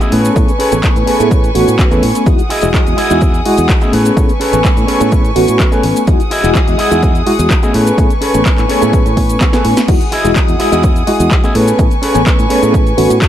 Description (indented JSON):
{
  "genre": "filtered disco house",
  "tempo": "126 BPM",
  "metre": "4/4",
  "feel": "straight",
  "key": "unclear",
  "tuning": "A4 = 441 Hz",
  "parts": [
    { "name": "reed electric piano", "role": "accompaniment", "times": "0.0-13.3 s", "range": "G#3 to G#5", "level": "-15 LUFS", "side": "equal", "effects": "fast tremolo, phaser, vintage 12-bit sampler grit, sidechain pumping" },
    { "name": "warm studio violin section", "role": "sustained chords", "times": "0.0-13.3 s", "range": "G#4 to D#6", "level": "-19 LUFS", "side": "left 1 dB", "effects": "sidechain pumping" },
    { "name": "electric guitar with an envelope filter", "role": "riff", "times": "0.0-12.9 s", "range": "C#4 to D#5", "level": "-18 LUFS", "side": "right 1 dB", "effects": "sidechain pumping" },
    { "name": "punchy analog drum machine", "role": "drums", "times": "0.0-13.3 s", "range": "crash cymbal, handclaps, hi-hat, shaker, snare drum", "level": "-20 LUFS", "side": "left 1 dB", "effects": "overdrive, sidechain pumping on hats, sidechain pumping on perc, sidechain pumping on cymbals" },
    { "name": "maracas", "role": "percussion", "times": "0.0-13.3 s", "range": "none", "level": "-32 LUFS", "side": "right 5 dB", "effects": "sidechain pumping on perc" },
    { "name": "fingered electric bass", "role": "bass", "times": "0.1-13.2 s", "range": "E1 to A2", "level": "-16 LUFS", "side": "equal", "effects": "sidechain pumping" },
    { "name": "electronic kick drum", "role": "drums", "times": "0.4-13.3 s", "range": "none", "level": "-12 LUFS", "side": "equal", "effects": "overdrive" }
  ],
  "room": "light reverb",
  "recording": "none",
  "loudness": "-9 LUFS",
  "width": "side -11 dB against mid",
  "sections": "0.0-13.3 A section",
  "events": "drum fill 9.4-9.9",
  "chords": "0.1 Amaj9; 2.3 Emaj9; 3.9 Amaj9; 6.1 Emaj9; 7.7 Amaj9; 9.9 Emaj9; 11.6 Amaj9",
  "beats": "| 0.36 0.84 1.31 1.79 | 2.27 2.74 3.22 3.69 | 4.17 4.65 5.12 5.60 | 6.08 6.55 7.03 7.50 | 7.98 8.46 8.93 9.41 | 9.88 10.36 10.84 11.31 | 11.79 12.27 12.74 13.22"
}